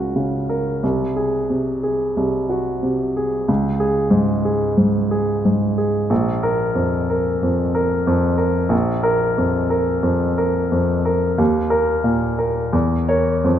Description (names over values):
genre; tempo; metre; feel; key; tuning
classical, romantic character piece for solo piano; 90 BPM; 4/4; rubato; Bb minor from 6.1 s; A4 = 438 Hz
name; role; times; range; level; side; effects
warm baby grand piano; solo; 0.0-13.6 s; Bb1 to Db5; -17 LUFS; equal; none
room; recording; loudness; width
moderate scoring stage reverb, RT60 1.6 s; none; -17 LUFS; side -10 dB against mid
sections
0.0-13.6 A section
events
none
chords
0.0 Gb/Db; 0.8 Ab7/C; 3.5 Db5; 6.1 Bb5; 11.4 Eb5; 12.7 Bbdim/Fb